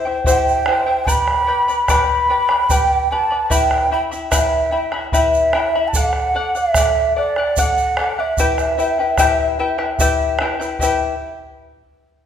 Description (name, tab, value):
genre	andean folk, Andean ensemble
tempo	74 BPM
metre	3/4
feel	straight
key	E minor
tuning	A4 = 435 Hz
part	charango	accompaniment	0.0-11.1 s	E4 to B5	-19 LUFS	left 5 dB	none
part	bombo	percussion	0.2-11.2 s	none	-22 LUFS	right 1 dB	none
part	mellow hollow large quena	melody	0.3-10.0 s	D5 to B5	-18 LUFS	right 2 dB	none
part	egg shaker	percussion	0.3-11.2 s	none	-27 LUFS	right 6 dB	none
room	wet recital hall reverb, RT60 1.6 s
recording	recorded in a church or concert hall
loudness	-15 LUFS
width	side -8 dB against mid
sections	0.0-10.8 A section; 10.8-12.3 B section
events	none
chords	0.0 C; 1.1 G; 3.5 Em; 5.9 D; 8.4 Em